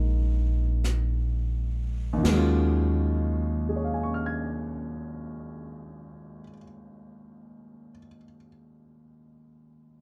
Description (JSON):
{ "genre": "jazz ballad", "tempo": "42 BPM", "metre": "4/4", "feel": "swing 67% on 8ths", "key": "Eb minor", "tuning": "A4 = 440 Hz", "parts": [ { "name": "warm grand piano", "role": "accompaniment", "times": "0.0-10.0 s", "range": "Eb2 to Ab6", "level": "-33 LUFS", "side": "equal", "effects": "none" }, { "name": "upright bass", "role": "bass", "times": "0.0-6.5 s", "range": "Bb1 to Eb2", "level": "-29 LUFS", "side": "equal", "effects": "none" }, { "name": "jazz brush drum kit", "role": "drums", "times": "0.8-2.9 s", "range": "brushed snare drum, crash cymbal, hi-hat, snare drum", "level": "-34 LUFS", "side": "equal", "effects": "none" } ], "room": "light reverb", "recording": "dark, warm production", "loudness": "-27 LUFS", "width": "mono", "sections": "0.0-2.2 A section; 2.2-7.9 B section", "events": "slowing down 0.0-2.2", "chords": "0.0 Ebm11" }